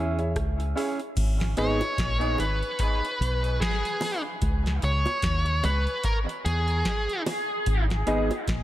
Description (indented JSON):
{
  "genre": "dub reggae",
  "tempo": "74 BPM",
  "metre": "4/4",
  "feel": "swing 59% on 16ths",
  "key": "G# minor",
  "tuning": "A4 = 441 Hz",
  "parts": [
    { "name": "mellow electric guitar", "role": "accompaniment", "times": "0.0-1.8, 8.1-8.3 s", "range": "B3 to G#4", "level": "-33 LUFS", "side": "right 4 dB", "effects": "dub echo" },
    { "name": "warm upright piano", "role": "stabs", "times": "0.0-1.8, 8.1-8.3 s", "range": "D#4 to E5", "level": "-33 LUFS", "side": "left 2 dB", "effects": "dub echo" },
    { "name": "deep dub fingered electric bass", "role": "bass", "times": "0.0-8.6 s", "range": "G#1 to E2", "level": "-26 LUFS", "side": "equal", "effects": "none" },
    { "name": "booming analog drum machine", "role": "drums", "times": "0.2-8.6 s", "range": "crash cymbal, hi-hat, kick drum, rim click, snare drum", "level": "-29 LUFS", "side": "equal", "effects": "none" },
    { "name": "smooth overdriven lead guitar", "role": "melody", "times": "1.6-7.2 s", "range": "G#4 to C#5", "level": "-28 LUFS", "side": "equal", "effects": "dub echo" },
    { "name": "bongos", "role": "percussion", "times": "1.8-8.5 s", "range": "none", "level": "-38 LUFS", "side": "right 1 dB", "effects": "dub echo" }
  ],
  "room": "light reverb, digital ambience",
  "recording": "echo-heavy mix",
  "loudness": "-24 LUFS",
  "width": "side -14 dB against mid",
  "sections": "0.0-1.2 A section; 1.2-8.6 B section",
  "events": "part muted 7.7-8.6",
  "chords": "0.0 C#m; 1.2 G#m; 4.4 C#m; 7.7 G#m"
}